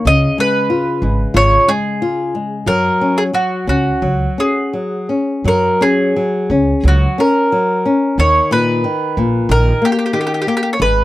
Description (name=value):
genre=fado-style ballad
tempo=83-94 BPM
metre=4/4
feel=rubato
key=F# major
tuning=A4 = 440 Hz
part: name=mandolin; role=melody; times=0.0-11.0 s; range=F#4 to D#5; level=-16 LUFS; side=right 1 dB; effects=none
part: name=flamenco guitar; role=accompaniment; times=0.0-11.0 s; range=A#2 to E#4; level=-17 LUFS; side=left 3 dB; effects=none
part: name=upright bass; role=bass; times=0.1-11.0 s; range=G#1 to F#2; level=-15 LUFS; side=right 1 dB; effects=none
room=light reverb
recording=dry, close 1970s-style studio recording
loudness=-13 LUFS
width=side -16 dB against mid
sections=0.0-5.4 A section; 5.4-11.0 A section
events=none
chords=0.1 C#7; 2.7 F#5; 8.2 D#5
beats=| 0.05 0.70 1.34 2.00 | 2.67 3.34 4.03 4.74 | 5.45 6.15 6.84 7.51 | 8.18 8.84 9.50 10.14 | 10.79